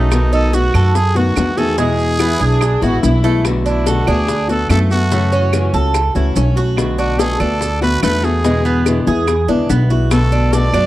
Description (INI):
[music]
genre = latin, Cuban son and guajira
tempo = 144 BPM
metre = 4/4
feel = straight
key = unclear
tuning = A4 = 440 Hz
[part]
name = growling trumpet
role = melody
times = 0.0-10.9 s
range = D#4 to D5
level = -21 LUFS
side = equal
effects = none
[part]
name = nylon-string guitar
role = accompaniment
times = 0.0-10.9 s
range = B2 to F#4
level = -18 LUFS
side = left 3 dB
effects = none
[part]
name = Cuban tres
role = arpeggios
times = 0.0-10.9 s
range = G#3 to A4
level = -20 LUFS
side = right 3 dB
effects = none
[part]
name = upright bass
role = bass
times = 0.0-10.9 s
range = A1 to F#2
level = -16 LUFS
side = equal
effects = none
[part]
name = bongos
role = percussion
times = 0.1-10.9 s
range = none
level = -24 LUFS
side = left 5 dB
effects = none
[part]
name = claves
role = percussion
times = 0.1-10.9 s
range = none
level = -28 LUFS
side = right 8 dB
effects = none
[part]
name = maracas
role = percussion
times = 0.1-10.9 s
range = none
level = -31 LUFS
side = right 7 dB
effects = none
[part]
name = warm chamber violin section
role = second line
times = 2.2-3.4 s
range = D4 to F#4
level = -23 LUFS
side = right 1 dB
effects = none
[sound]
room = small room reverb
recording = dry, close 1970s-style studio recording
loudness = -12 LUFS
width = side -15 dB against mid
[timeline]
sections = 0.0-3.4 A section; 3.4-10.9 B section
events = none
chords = 0.1 B7; 1.8 E; 3.4 Bm7; 5.1 F#m7; 6.8 Bm7; 8.4 E7; 10.1 Bm7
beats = | 0.12 0.53 0.95 1.36 | 1.78 2.20 2.61 3.03 | 3.45 3.86 4.28 4.70 | 5.11 5.53 5.95 6.36 | 6.78 7.20 7.61 8.03 | 8.45 8.86 9.28 9.70 | 10.11 10.53